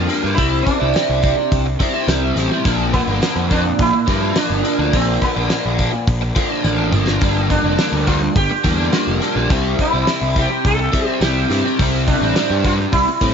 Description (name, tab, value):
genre	psychedelic rock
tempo	105 BPM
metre	4/4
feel	straight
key	unclear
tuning	A4 = 440 Hz
part	sitar	melody	0.0-13.3 s	Bb3 to A4	-21 LUFS	right 3 dB	tape echo
part	overdriven electric guitar	riff	0.0-13.3 s	G2 to E4	-19 LUFS	left 1 dB	flanger, tape echo
part	fuzz picked electric bass	bass	0.0-13.3 s	F1 to A2	-20 LUFS	equal	overdrive
part	damped 70s drum kit	drums	0.1-13.3 s	hi-hat, kick drum, snare drum, toms	-21 LUFS	equal	tape echo
part	tambourine	percussion	0.1-13.0 s	none	-38 LUFS	right 8 dB	none
room	small room ambience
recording	echo-heavy mix, nothing above 7.5 kHz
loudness	-14 LUFS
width	side -7 dB against mid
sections	0.0-13.3 A section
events	drum fill 6.6-7.2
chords	0.4 Cadd9; 2.7 Bb6; 7.2 Gm7; 9.5 C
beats	| 0.37 0.94 1.51 2.08 | 2.65 3.22 3.79 4.36 | 4.93 5.50 6.07 6.64 | 7.21 7.79 8.36 8.93 | 9.50 10.07 10.64 11.21 | 11.78 12.35 12.92